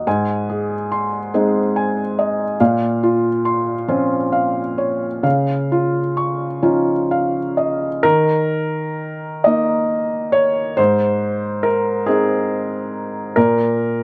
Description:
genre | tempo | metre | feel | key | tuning
neoclassical minimalist piano | 42-48 BPM (dotted quarters) | 6/8 | rubato | unclear | A4 = 440 Hz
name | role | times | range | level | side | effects
felt-muted upright piano | solo | 0.0-14.0 s | Ab2 to Db6 | -19 LUFS | equal | none
room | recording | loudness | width
light reverb | recorded outdoors, with no room sound | -19 LUFS | mono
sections
0.0-8.0 A section; 8.0-14.0 B section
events
none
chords
0.1 Ab; 2.6 Bbmadd9; 5.2 Dbadd9; 8.0 Eb5; 10.8 Ab; 13.4 N.C.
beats
| 0.06 1.33 | 2.60 3.89 | 5.25 6.64 | 8.04 9.45 | 10.78 12.07 | 13.36

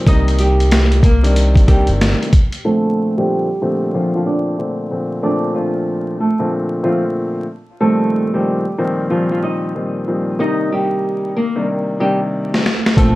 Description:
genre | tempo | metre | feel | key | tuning
hip hop, boom-bap hip-hop | 93 BPM | 4/4 | swing 63% on 16ths | Bb major | A4 = 440 Hz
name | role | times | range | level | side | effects
flamenco guitar | melody | 0.0-13.2 s | F3 to Eb5 | -19 LUFS | right 1 dB | high-pass filter, low-pass filter
dark grand piano | accompaniment | 0.0-13.2 s | Bb2 to Eb4 | -19 LUFS | left 1 dB | high-pass filter, low-pass filter
deep dub fingered electric bass | bass | 0.1-2.1, 13.0-13.2 s | G1 to C2 | -14 LUFS | equal | none
boom bap sampler-style drum kit | drums | 0.1-2.6, 12.5-13.2 s | hi-hat, kick drum, snare drum | -14 LUFS | equal | none
room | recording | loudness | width
moderate studio reverb, RT60 0.6 s | dark, warm production, vinyl crackle | -14 LUFS | side -18 dB against mid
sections
0.0-2.6 A section; 2.6-13.0 B section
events
filter sweep 2.6-13.0; drum fill 12.3-13.0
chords
0.1 Cm7; 2.6 Bbmaj7; 7.8 Eb6; 10.4 Cm7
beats
| 0.07 0.71 1.36 2.00 | 2.65 3.29 3.94 4.58 | 5.23 5.88 6.52 7.17 | 7.81 8.46 9.10 9.75 | 10.39 11.04 11.68 12.33 | 12.97

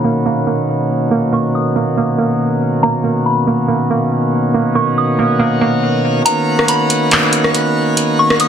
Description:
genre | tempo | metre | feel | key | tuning
hip hop, atmospheric cloud-rap | 140 BPM | 4/4 | half-time | B major | A4 = 436 Hz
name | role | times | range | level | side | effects
soft synth bell | melody | 0.0-8.5 s | A#5 to D#6 | -20 LUFS | left 1 dB | chorus, phaser, low-pass filter, ping-pong delay
pipe organ, plenum | sustained chords | 0.0-8.5 s | B2 to F#4 | -15 LUFS | equal | none
hollow square pluck | arpeggios | 0.0-6.3 s | A#3 | -19 LUFS | right 4 dB | chorus, low-pass filter, ping-pong delay
booming analog drum machine | drums | 6.3-8.5 s | handclaps, hi-hat, rim click | -14 LUFS | equal | none
room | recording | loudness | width
light reverb, digital ambience | dense, heavily limited modern master, low-pass filter | -12 LUFS | side -8 dB against mid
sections
0.0-6.3 A section; 6.3-8.5 B section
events
filter sweep 0.0-6.3; kick muted 6.3-8.5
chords
0.0 Bmaj9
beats
0.26 0.69 | 1.11 1.54 1.97 2.40 | 2.83 3.26 3.69 4.11 | 4.54 4.97 5.40 5.83 | 6.26 6.69 7.11 7.54 | 7.97 8.40

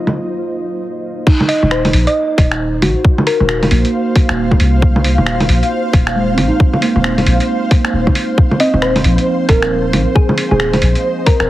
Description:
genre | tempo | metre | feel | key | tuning
future garage | 135 BPM | 4/4 | swing 62% on 16ths | Eb dorian | A4 = 440 Hz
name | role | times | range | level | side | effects
muted felt-like synth keys | accompaniment | 0.0-11.5 s | F3 to Gb4 | -19 LUFS | right 3 dB | chorus, sidechain pumping, tape echo
ethereal airy pad | sustained chords | 0.0-11.5 s | Gb3 to F5 | -22 LUFS | equal | ensemble chorus, built-in reverb, tremolo, sidechain pumping
lo-fi sampler-style drum kit | drums | 0.1-11.5 s | bongos, crash cymbal, finger snaps, hi-hat | -17 LUFS | equal | none
electronic kick drum | drums | 1.3-11.4 s | none | -10 LUFS | equal | none
thumb-piano-like synth pluck | melody | 1.5-3.6, 8.6-11.5 s | Ab4 to Eb5 | -17 LUFS | left 1 dB | chorus, phaser, analog delay
soft 808-style bass | bass | 1.6-11.5 s | Eb1 to C2 | -16 LUFS | equal | sidechain pumping
room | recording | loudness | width
light reverb | heavily compressed radio sound | -11 LUFS | side -15 dB against mid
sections
0.0-1.3 A section; 1.3-11.5 B section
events
break 0.4-1.3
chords
0.0 Ebm69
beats
0.38 0.82 | 1.27 1.71 2.16 2.60 | 3.05 3.49 3.93 4.38 | 4.82 5.27 5.71 6.16 | 6.60 7.05 7.49 7.93 | 8.38 8.82 9.27 9.71 | 10.16 10.60 11.05 11.49

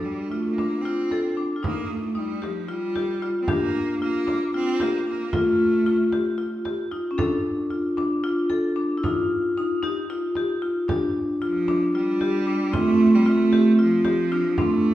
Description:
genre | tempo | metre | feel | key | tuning
contemporary instrumental, chamber music in an uneven meter | 227 BPM (eighths) | 7/8 | straight | unclear | A4 = 440 Hz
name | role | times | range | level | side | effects
clear cello | melody | 0.0-6.4, 11.4-14.9 s | F3 to C4 | -24 LUFS | right 3 dB | none
vibraphone with medium hard mallets | second line | 0.0-14.9 s | C4 to F4 | -27 LUFS | left 2 dB | none
marimba with hard mallets | arpeggios | 0.0-14.9 s | C4 to A4 | -24 LUFS | left 2 dB | none
frame drum | percussion | 0.3-14.8 s | none | -32 LUFS | right 2 dB | none
room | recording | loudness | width
wet recital hall reverb, RT60 1.6 s | heard from further back in the room | -20 LUFS | side -14 dB against mid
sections
0.0-14.6 A section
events
none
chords
0.0 Dm7; 1.6 F7sus2; 3.5 Gm7; 5.3 F; 7.2 Dm; 9.0 Ebadd9; 10.9 G5; 12.7 Fadd9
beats
0.06 0.32 0.59 0.85 1.12 1.38 | 1.64 1.91 2.17 2.44 2.70 2.96 3.23 | 3.49 3.76 4.02 4.29 4.55 4.81 5.08 | 5.34 5.61 5.87 6.13 6.40 6.66 6.93 | 7.19 7.46 7.72 7.98 8.25 8.51 8.78 | 9.04 9.31 9.57 9.84 10.10 10.36 10.63 | 10.89 11.16 11.42 11.69 11.95 12.21 12.48 | 12.74 13.01 13.27 13.54 13.80 14.06 14.33 | 14.59 14.86

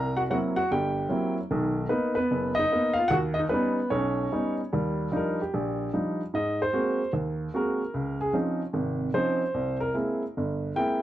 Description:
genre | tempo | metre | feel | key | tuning
solo jazz | 149 BPM | 4/4 | swing 64% on 8ths | Eb major from 4.7 s | A4 = 440 Hz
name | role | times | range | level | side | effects
warm upright piano | solo | 0.0-11.0 s | F#1 to Bb5 | -25 LUFS | equal | none
room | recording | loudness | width
small room ambience | dry, close 1970s-style studio recording | -25 LUFS | side -13 dB against mid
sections
0.0-4.7 A section; 4.7-11.0 B section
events
upright piano solo 4.7-11.0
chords
0.0 C7#11; 1.5 Bmaj7; 3.1 Eb7b13; 4.7 Ebmaj9; 6.3 Ab9; 7.9 Dbmaj9; 9.5 C7b13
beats
0.30 0.70 1.10 | 1.50 1.91 2.31 2.71 | 3.11 3.51 3.92 4.32 | 4.72 5.12 5.52 5.92 | 6.33 6.73 7.13 7.53 | 7.93 8.34 8.74 9.14 | 9.54 9.94 10.35 10.75

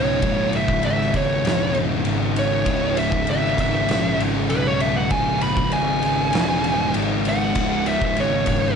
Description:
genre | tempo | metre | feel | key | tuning
stoner and doom metal | 98 BPM | 4/4 | straight | C# dorian | A4 = 440 Hz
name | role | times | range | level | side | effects
fuzz lead guitar | melody | 0.0-8.8 s | B4 to B5 | -23 LUFS | right 1 dB | distortion, slapback echo
thick fuzz guitar | riff | 0.0-8.8 s | C#2 to C#3 | -24 LUFS | left 8 dB | distortion
thick fuzz guitar | riff | 0.0-8.8 s | C#2 to C#3 | -26 LUFS | right 14 dB | distortion
fuzz picked electric bass | bass | 0.0-8.8 s | C#1 to B1 | -27 LUFS | right 1 dB | overdrive
oversized low-tuned drum kit | drums | 0.2-8.6 s | crash cymbal, kick drum, ride cymbal, snare drum | -25 LUFS | equal | none
room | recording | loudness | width
light reverb | nothing above 10.9 kHz | -18 LUFS | side -6 dB against mid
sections
0.0-8.8 A section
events
lead electric guitar solo 0.0-8.8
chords
0.0 C#m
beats
| 0.23 0.84 1.45 2.06 | 2.67 3.29 3.90 4.51 | 5.12 5.73 6.34 6.95 | 7.57 8.18

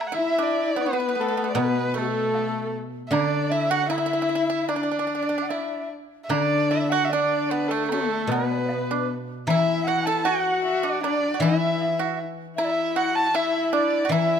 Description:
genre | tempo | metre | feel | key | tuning
chinese traditional, Chinese chamber ensemble | 77 BPM | 4/4 | rubato | unclear | A4 = 441 Hz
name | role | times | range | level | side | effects
dark erhu | melody | 0.0-14.4 s | A4 to A5 | -27 LUFS | right 1 dB | none
woodblock | percussion | 0.0-14.3 s | none | -37 LUFS | left 1 dB | none
mellow large dizi | second line | 0.1-14.4 s | F#4 to A5 | -29 LUFS | left 4 dB | none
pipa | second line | 0.1-14.4 s | A3 to A4 | -28 LUFS | right 9 dB | none
rich horsehead fiddle | second line | 0.1-14.4 s | A3 to F#4 | -28 LUFS | left 4 dB | none
guzheng | accompaniment | 1.5-14.4 s | B2 to E3 | -28 LUFS | left 2 dB | none
room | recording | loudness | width
light reverb | close, detailed microphones | -21 LUFS | side -8 dB against mid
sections
0.0-14.4 A section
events
none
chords
none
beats
| 0.01 0.79 1.57 2.36 | 3.14 3.91 4.70 5.50 | 6.31 7.11 7.90 8.69 | 9.49 10.26 11.03 11.80 | 12.58 13.35 14.12

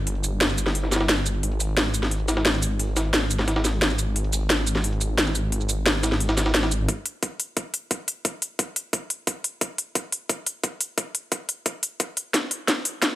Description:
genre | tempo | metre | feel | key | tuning
dark technical drum and bass | 176 BPM | 4/4 | straight | unclear | A4 = 440 Hz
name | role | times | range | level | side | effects
snarling distorted saw bass | bass | 0.0-6.9 s | G1 to Ab1 | -25 LUFS | equal | distortion
breakbeat sampler-style drum kit | drums | 0.1-6.8 s | hi-hat, snare drum | -29 LUFS | equal | high-pass filter on hats, low-pass filter on hats, studio reverb, high-pass filter on snare, low-pass filter on snare
drum and bass drum kit | drums | 0.1-13.1 s | hi-hat, shaker, snare drum | -23 LUFS | equal | studio reverb
electronic kick drum | drums | 6.9-13.1 s | none | -28 LUFS | equal | high-pass filter on kick, studio reverb, high-pass filter on room
room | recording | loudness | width
digital ambience | high-pass filter | -22 LUFS | side -15 dB against mid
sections
0.0-6.9 A section; 6.9-13.2 B section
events
build-up 6.9-13.2; drum fill 12.3-13.2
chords
none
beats
| 0.07 0.41 0.75 1.09 | 1.43 1.77 2.11 2.45 | 2.79 3.14 3.48 3.82 | 4.16 4.50 4.84 5.18 | 5.52 5.86 6.20 6.54 | 6.89 7.23 7.57 7.91 | 8.25 8.59 8.93 9.27 | 9.61 9.95 10.29 10.64 | 10.98 11.32 11.66 12.00 | 12.34 12.68 13.02

